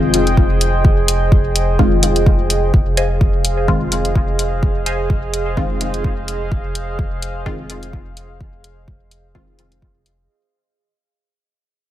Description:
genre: dub techno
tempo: 127 BPM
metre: 4/4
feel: swing 56% on 16ths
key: F minor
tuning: A4 = 440 Hz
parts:
  - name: warbly tape-like pad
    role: sustained chords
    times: 0.0-10.3 s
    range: Ab4 to G5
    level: -22 LUFS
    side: right 3 dB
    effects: chorus, built-in reverb, vintage 12-bit sampler grit, sidechain pumping
  - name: filtered dub chord stab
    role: stabs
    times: 0.0-10.3 s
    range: Eb3 to F4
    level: -21 LUFS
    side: left 2 dB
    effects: chorus, phaser, sidechain pumping, dub echo
  - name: pure sine sub bass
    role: bass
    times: 0.0-10.3 s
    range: F1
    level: -21 LUFS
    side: equal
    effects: tube saturation, sidechain pumping
  - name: electronic hi-hat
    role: drums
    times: 0.1-10.2 s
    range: none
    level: -20 LUFS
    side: left 1 dB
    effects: none
  - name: electronic kick drum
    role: drums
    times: 0.4-9.9 s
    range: none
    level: -16 LUFS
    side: equal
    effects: overdrive
  - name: filtered dub chord stab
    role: riff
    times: 3.0-5.0 s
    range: C5 to Ab5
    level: -26 LUFS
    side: left 3 dB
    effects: phaser, sidechain pumping, dub echo
room: little or no reverb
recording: none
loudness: -14 LUFS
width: side -12 dB against mid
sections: 0.0-2.7 A section; 2.7-10.3 B section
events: fade-out 2.7-10.3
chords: 0.0 Fm7

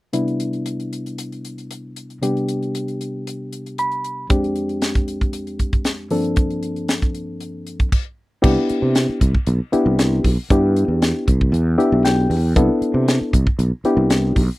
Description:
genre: electric jazz fusion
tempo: 116 BPM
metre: 4/4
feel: straight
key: C major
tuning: A4 = 438 Hz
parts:
  - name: reed electric piano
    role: accompaniment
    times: 0.1-14.4 s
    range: F2 to B5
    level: -21 LUFS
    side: left 1 dB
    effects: none
  - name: tight funk drum kit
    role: drums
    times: 0.1-14.5 s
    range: crash cymbal, hi-hat, kick drum, snare drum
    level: -19 LUFS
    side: equal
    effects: none
  - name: sustaining fretless electric bass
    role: bass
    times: 8.4-14.5 s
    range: B1 to C3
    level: -18 LUFS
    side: equal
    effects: none
room: little or no reverb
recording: dry, close 1970s-style studio recording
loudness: -17 LUFS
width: side -19 dB against mid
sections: 0.1-8.4 A section; 8.4-14.6 B section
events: reed electric piano fill 3.5-4.3, 11.5-12.6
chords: 0.1 Cmaj9; 4.3 Fm6; 6.1 Gm11; 8.4 Cmaj7

